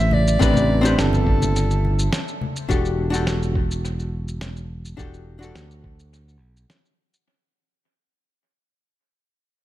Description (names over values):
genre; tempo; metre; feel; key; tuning
sunset chillout; 105 BPM; 4/4; straight; unclear; A4 = 440 Hz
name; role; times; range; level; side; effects
warm soprano saxophone; melody; 0.0-2.1 s; A4 to E5; -26 LUFS; right 1 dB; dub echo
archtop guitar, miked and amplified; accompaniment; 0.0-7.2 s; C4 to C5; -24 LUFS; moving between left 7 dB and right 2 dB; auto-pan, analog delay
modern bright fingered electric bass; bass; 0.0-6.6 s; E1 to D2; -22 LUFS; equal; none
congas; percussion; 0.1-2.5 s; none; -28 LUFS; left 3 dB; none
electronic shaker and snare drum; drums; 0.3-7.2 s; none; -29 LUFS; equal; dub echo
electronic kick drum; drums; 0.4-6.0 s; none; -22 LUFS; equal; none
room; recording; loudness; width
light reverb; echo-heavy mix; -18 LUFS; side -14 dB against mid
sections
0.0-7.3 A section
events
fade-out 0.0-7.3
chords
0.0 Am11; 2.4 Em11